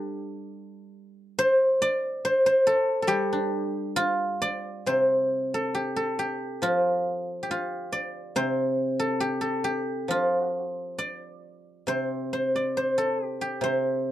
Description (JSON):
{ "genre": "chinese traditional, Chinese solo plucked strings", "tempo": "69 BPM", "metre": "2/4", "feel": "rubato", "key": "G shang mode", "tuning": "A4 = 444 Hz", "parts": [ { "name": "guzheng", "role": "solo", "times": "0.0-14.1 s", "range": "C3 to D5", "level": "-24 LUFS", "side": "equal", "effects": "none" } ], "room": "light reverb", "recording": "dry, close 1970s-style studio recording", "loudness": "-24 LUFS", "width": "side -12 dB against mid", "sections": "0.0-4.9 A section; 4.9-14.1 B section", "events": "none", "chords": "none" }